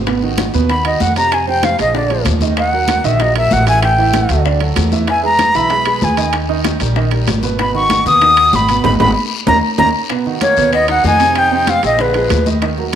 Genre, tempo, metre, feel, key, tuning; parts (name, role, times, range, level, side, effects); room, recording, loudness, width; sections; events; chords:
Afro-Cuban jazz; 191 BPM; 4/4; straight; G# minor; A4 = 440 Hz
upright bass; bass; 0.0-13.0 s; G#1 to E#2; -18 LUFS; left 1 dB
warm concert grand piano; accompaniment; 0.1-13.0 s; B2 to E5; -20 LUFS; right 8 dB
bongos; percussion; 0.1-12.9 s; -25 LUFS; left 12 dB
congas; percussion; 0.1-12.9 s; -22 LUFS; left 1 dB
guiro; percussion; 0.1-12.9 s; -28 LUFS; left 12 dB
timbales; percussion; 0.1-13.0 s; -26 LUFS; right 10 dB
breathy bright concert flute; melody; 0.7-12.5 s; B4 to D#6; -13 LUFS; left 1 dB; slapback echo
bright tenor saxophone; second line; 10.4-12.5 s; G#3 to Eb4; -23 LUFS; left 9 dB
moderate echo chamber reverb, RT60 1.6 s, studio reverb; 1960s-style stereo with parts hard left and right; -11 LUFS; side -9 dB against mid
0.1-10.1 A section; 10.1-13.0 B section
flute solo 0.1-10.1; drum fill 8.8-10.1; band accent 8.8-10.1
0.1 G#m7; 1.3 Fmadd11; 1.9 A#7; 2.6 D#m; 3.8 A5; 4.5 Dadd9; 5.1 Emaj7; 6.3 D#; 7.6 G#m7; 9.5 D#5; 10.1 G#m9; 11.4 Fm11; 12.0 A#7b9